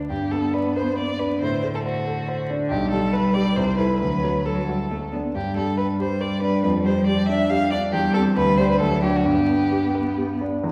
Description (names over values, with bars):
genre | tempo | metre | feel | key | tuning
quick classical-period movement for piano trio | 138 BPM | 3/4 | rubato | G major | A4 = 439 Hz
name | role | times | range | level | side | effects
clear grand piano | accompaniment | 0.0-10.7 s | B1 to D5 | -25 LUFS | equal | none
rich violin | melody | 0.1-10.2 s | F#4 to F5 | -28 LUFS | equal | none
rich cello | second line | 0.1-10.4 s | D3 to B3 | -27 LUFS | equal | none
room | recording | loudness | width
wet recital hall reverb, RT60 1.6 s | heard from further back in the room, vinyl crackle | -22 LUFS | mono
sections
0.1-10.6 A section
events
none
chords
0.1 G; 1.4 D7/A; 2.7 G/B; 3.6 Am7/C; 4.0 D; 5.4 G; 6.6 G5/F; 7.9 C/E; 8.4 G/D; 8.8 D; 9.3 G